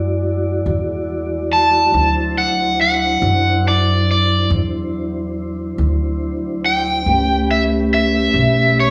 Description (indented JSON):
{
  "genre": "slow blues",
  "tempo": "47 BPM (dotted quarters)",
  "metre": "12/8",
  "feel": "straight",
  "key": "unclear",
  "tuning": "A4 = 440 Hz",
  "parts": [
    { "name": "mellow tonewheel organ", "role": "sustained chords", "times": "0.0-8.9 s", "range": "F#3 to D5", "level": "-23 LUFS", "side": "equal", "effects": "slow rotary speaker" },
    { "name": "upright bass", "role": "bass", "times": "0.0-8.9 s", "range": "B1 to F#2", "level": "-22 LUFS", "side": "equal", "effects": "none" },
    { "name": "crunchy overdriven guitar", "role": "melody", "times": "1.5-8.9 s", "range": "C#5 to A5", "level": "-18 LUFS", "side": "equal", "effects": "none" }
  ],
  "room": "wet large studio reverb, RT60 1.3 s",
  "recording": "band playing live in one room, studio reverb",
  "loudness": "-17 LUFS",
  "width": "mono",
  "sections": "0.0-8.9 A section",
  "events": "none",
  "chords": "0.0 E9; 1.9 D9; 7.1 A9"
}